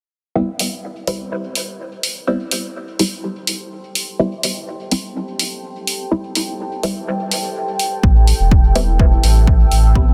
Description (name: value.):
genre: dub techno.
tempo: 125 BPM.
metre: 4/4.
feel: straight.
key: A minor.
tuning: A4 = 440 Hz.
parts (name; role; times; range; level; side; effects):
deep dark ambient pad; sustained chords; 3.2-10.1 s; G5 to E6; -29 LUFS; equal; chorus, built-in reverb, sidechain pumping.
filtered dub chord stab; stabs; 0.4-10.1 s; G3 to E4; -25 LUFS; equal; phaser, vintage 12-bit sampler grit, sidechain pumping, dub echo.
electronic hi-hat; drums; 0.6-9.8 s; none; -23 LUFS; equal; none.
warm sub bass; bass; 8.0-10.1 s; E1 to A1; -16 LUFS; equal; sidechain pumping.
electronic kick drum; drums; 8.0-10.1 s; none; -15 LUFS; equal; none.
room: light reverb.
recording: dense, heavily limited modern master.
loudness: -18 LUFS.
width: mono.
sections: 0.4-10.1 A section.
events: none.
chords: 0.4 Am7.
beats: | 0.35 0.83 1.31 1.79 | 2.27 2.75 3.23 3.71 | 4.20 4.67 5.16 5.63 | 6.12 6.59 7.08 7.55 | 8.04 8.52 8.99 9.47 | 9.96.